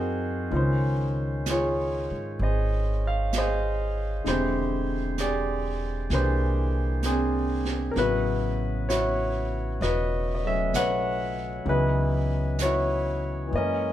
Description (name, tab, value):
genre	jazz ballad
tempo	65 BPM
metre	4/4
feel	swing 68% on 8ths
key	unclear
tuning	A4 = 436 Hz
part	clear concert grand piano	accompaniment	0.0-13.9 s	C#3 to F#5	-26 LUFS	equal	none
part	upright bass	bass	0.0-13.9 s	E1 to G#2	-28 LUFS	equal	none
part	jazz brush drum kit	drums	0.5-13.9 s	brushed snare drum, hi-hat, snare drum	-36 LUFS	right 4 dB	none
room	moderate stone room reverb, RT60 1.2 s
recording	band playing live in one room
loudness	-24 LUFS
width	side -12 dB against mid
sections	0.5-13.9 A section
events	none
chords	0.0 G#7; 0.5 C#maj9; 4.3 E7alt; 8.0 A69; 11.7 C#m11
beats	| 0.51 1.45 2.39 3.33 | 4.25 5.18 6.10 7.03 | 7.96 8.89 9.81 10.74 | 11.66 12.59 13.53